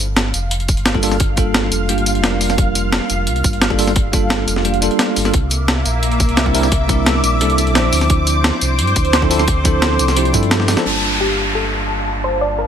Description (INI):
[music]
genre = liquid drum and bass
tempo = 174 BPM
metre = 4/4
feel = straight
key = G dorian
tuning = A4 = 440 Hz
[part]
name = lush unison pad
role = sustained chords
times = 0.0-12.7 s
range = Bb3 to D6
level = -22 LUFS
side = equal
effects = chorus, phaser, sidechain pumping
[part]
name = sub bass with octave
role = bass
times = 0.0-12.7 s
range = F1 to G2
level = -20 LUFS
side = equal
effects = none
[part]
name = breakbeat sampler-style drum kit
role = drums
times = 0.2-10.8 s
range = hi-hat, snare drum, tambourine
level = -18 LUFS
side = equal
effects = none
[part]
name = electronic kick drum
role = drums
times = 0.7-10.4 s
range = none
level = -17 LUFS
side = equal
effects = none
[part]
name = bell-like tine electric piano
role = accompaniment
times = 0.9-12.7 s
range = F3 to A5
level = -20 LUFS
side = right 1 dB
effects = fast stereo tremolo, tape echo
[part]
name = downlifter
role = sound effects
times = 10.9-12.7 s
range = none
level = -20 LUFS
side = equal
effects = none
[part]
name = soft round pluck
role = melody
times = 11.2-12.7 s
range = G4 to D5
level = -20 LUFS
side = left 1 dB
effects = analog chorus, vintage 12-bit sampler grit, tape echo
[sound]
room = light reverb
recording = none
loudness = -13 LUFS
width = side -8 dB against mid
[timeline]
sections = 0.0-10.9 A section; 10.9-12.7 B section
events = drum fill 10.6; filter sweep on analog synth pad 10.9-12.7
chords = 0.0 Gm9; 5.3 C9; 7.9 Dm7; 10.9 Gm9